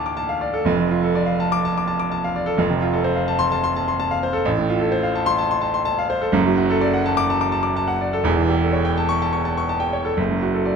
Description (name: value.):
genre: classical, virtuoso piano study.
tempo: 126 BPM.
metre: 4/4.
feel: rubato.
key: D major from 6.3 s.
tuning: A4 = 440 Hz.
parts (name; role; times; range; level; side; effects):
bright grand piano; solo; 0.0-10.8 s; E1 to D6; -18 LUFS; equal; none.
room: moderate large studio reverb, RT60 1.5 s.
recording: close, detailed microphones.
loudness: -18 LUFS.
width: side -6 dB against mid.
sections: 0.0-10.8 A section.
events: none.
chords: 0.0 Dm; 0.7 Dm/F; 2.6 F; 4.5 F/A; 6.3 D/F#; 8.3 A7/E; 10.2 D/F#.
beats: 0.17 | 0.65 1.13 1.61 2.09 | 2.57 3.04 3.51 3.98 | 4.46 4.93 5.40 5.87 | 6.35 6.82 7.30 7.78 | 8.25 8.73 9.21 9.70 | 10.18 10.66.